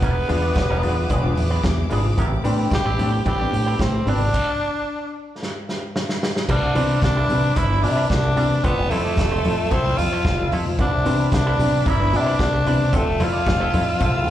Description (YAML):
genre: disco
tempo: 112 BPM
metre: 4/4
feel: straight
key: C major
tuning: A4 = 440 Hz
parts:
  - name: growling tenor saxophone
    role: melody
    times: 0.0-14.3 s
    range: A3 to G4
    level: -23 LUFS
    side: equal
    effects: slapback echo
  - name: electric guitar with an envelope filter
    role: accompaniment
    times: 0.0-14.3 s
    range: G3 to D5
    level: -30 LUFS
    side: right 4 dB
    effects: slapback echo
  - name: warm concert grand piano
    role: accompaniment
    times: 0.0-14.3 s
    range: A2 to F4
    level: -29 LUFS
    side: left 3 dB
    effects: slapback echo
  - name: clear studio string section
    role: sustained chords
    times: 0.0-14.3 s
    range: G4 to E6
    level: -35 LUFS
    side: left 2 dB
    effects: none
  - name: fingered electric bass with an envelope filter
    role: bass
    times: 0.0-14.3 s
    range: E1 to C3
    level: -21 LUFS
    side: equal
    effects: none
  - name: vintage drum kit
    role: drums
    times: 0.0-14.3 s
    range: crash cymbal, hi-hat, kick drum, snare drum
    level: -25 LUFS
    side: equal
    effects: none
  - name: congas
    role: percussion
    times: 0.3-14.3 s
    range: none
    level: -32 LUFS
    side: left 3 dB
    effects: none
room: light reverb, small room ambience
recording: live gig heard through the venue's PA, club reverb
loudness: -18 LUFS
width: side -12 dB against mid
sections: 0.0-6.5 A section; 6.5-14.3 B section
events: stop 4.3-6.5; drum fill 5.4-6.5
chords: 0.0 E7b9; 2.2 Am11; 6.5 Cmaj9; 8.6 Fmaj7; 10.8 Cmaj9; 12.9 Fmaj7